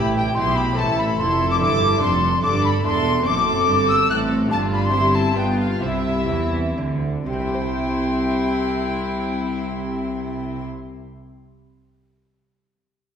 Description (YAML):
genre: classical, baroque-style concerto movement with solo episodes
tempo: 119-146 BPM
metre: 3/4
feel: straight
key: C major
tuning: A4 = 439 Hz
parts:
  - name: rich chamber violin section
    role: melody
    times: 0.0-10.6 s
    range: E5 to F#6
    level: -27 LUFS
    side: left 6 dB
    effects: none
  - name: warm chamber violin section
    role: second line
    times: 0.0-10.6 s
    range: E4 to A4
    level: -27 LUFS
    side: right 2 dB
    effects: none
  - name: dark chamber viola section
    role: accompaniment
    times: 0.0-10.6 s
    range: B3 to E4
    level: -27 LUFS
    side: left 1 dB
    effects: none
  - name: lute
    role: accompaniment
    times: 0.0-11.0 s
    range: E2 to G5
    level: -30 LUFS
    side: equal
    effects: none
  - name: dark chamber cello section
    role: bass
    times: 0.0-10.6 s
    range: E2 to E3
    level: -26 LUFS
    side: right 2 dB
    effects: none
  - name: rich chamber double bass section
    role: bass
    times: 0.0-10.6 s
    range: E1 to E2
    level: -26 LUFS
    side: right 1 dB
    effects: none
  - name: mellow silver concert flute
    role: melody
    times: 0.1-10.6 s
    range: E5 to F#6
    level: -24 LUFS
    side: left 1 dB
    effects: none
room: wet concert hall reverb, RT60 1.9 s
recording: heard from further back in the room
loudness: -18 LUFS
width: side -8 dB against mid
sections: 0.0-7.3 A section; 7.3-10.3 B section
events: slowing down 3.9-7.3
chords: 0.0 C; 0.8 Am; 2.0 Dm7/F; 3.3 D7/F#; 4.5 G5; 4.9 C/G; 5.4 G7; 5.8 C